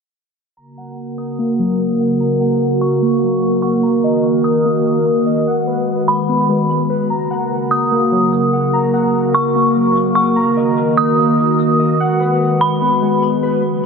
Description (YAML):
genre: hip hop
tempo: 147 BPM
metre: 4/4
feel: half-time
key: F# major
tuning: A4 = 442 Hz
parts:
  - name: warbly tape-like pad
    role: sustained chords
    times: 0.6-13.9 s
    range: C#3 to B4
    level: -15 LUFS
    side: equal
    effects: chorus, built-in reverb, low-pass filter
  - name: warbly lo-fi synth keys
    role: arpeggios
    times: 0.6-13.6 s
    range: D#3 to A#5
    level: -20 LUFS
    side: left 2 dB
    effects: chorus, low-pass filter, tape echo
  - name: dark detuned synth bell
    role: melody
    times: 1.2-13.2 s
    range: B5 to D#6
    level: -19 LUFS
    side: right 1 dB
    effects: chorus, low-pass filter, tape echo
room: wet huge ambient reverb, RT60 4.7 s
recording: none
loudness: -13 LUFS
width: side -5 dB against mid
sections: 0.6-13.6 A section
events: filter sweep 0.6-13.6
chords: 0.6 F#; 3.8 D#m; 5.5 G#m7; 7.1 F#; 10.4 D#m; 12.0 G#m7